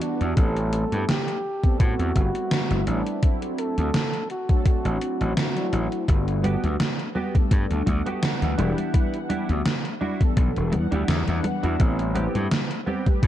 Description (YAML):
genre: vaporwave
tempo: 84 BPM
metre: 4/4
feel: swing 54% on 16ths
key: A dorian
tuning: A4 = 440 Hz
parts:
  - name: dark flugelhorn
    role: melody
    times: 0.0-6.0 s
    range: D4 to A4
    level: -31 LUFS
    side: equal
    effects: vintage 12-bit sampler grit, tape echo
  - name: mellow synth brass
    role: accompaniment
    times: 0.0-13.3 s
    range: E3 to F#5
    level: -29 LUFS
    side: equal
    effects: wide subtle chorus, tape echo
  - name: gated 80s digital drum machine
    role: drums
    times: 0.0-13.3 s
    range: congas, hi-hat, snare drum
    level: -27 LUFS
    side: right 1 dB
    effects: gated reverb, gated reverb snare, overdrive
  - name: gritty slap bass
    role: bass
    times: 0.2-13.3 s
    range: E1 to A2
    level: -24 LUFS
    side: equal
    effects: overdrive, tube saturation
  - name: electronic kick drum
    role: drums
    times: 0.4-13.3 s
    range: none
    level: -20 LUFS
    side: equal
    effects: overdrive
  - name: semi-hollow electric guitar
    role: riff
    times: 6.4-13.1 s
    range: B3 to G4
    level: -32 LUFS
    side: right 3 dB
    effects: ensemble chorus, tape echo
room: digital ambience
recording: dark, warm production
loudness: -21 LUFS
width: side -12 dB against mid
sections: 0.0-13.3 A section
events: none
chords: 0.4 Am9; 3.2 D7; 6.1 Gmaj7; 8.6 Em7; 11.8 Am9